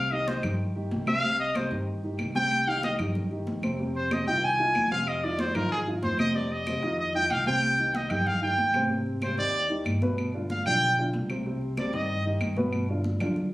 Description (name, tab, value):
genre	Afro-Cuban jazz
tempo	188 BPM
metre	4/4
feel	straight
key	C minor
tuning	A4 = 441 Hz
part	bright trumpet	melody	0.0-12.3 s	Ab4 to Ab5	-26 LUFS	equal	slapback echo
part	dark upright piano	accompaniment	0.0-13.5 s	B2 to C5	-32 LUFS	equal	none
part	upright bass	bass	0.0-13.5 s	C2 to B2	-33 LUFS	equal	none
part	congas	percussion	0.1-13.5 s	none	-32 LUFS	equal	none
part	claves	percussion	0.4-13.4 s	none	-38 LUFS	equal	none
room	moderate club reverb, RT60 0.6 s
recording	recorded on a phone in the room, studio reverb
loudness	-24 LUFS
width	side -18 dB against mid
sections	0.0-13.5 A section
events	trumpet solo 0.0-13.5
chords	0.0 Cm; 3.8 F7(no3); 7.6 Cm; 8.9 Abmaj7; 10.2 G7; 11.5 Cm; 12.7 G7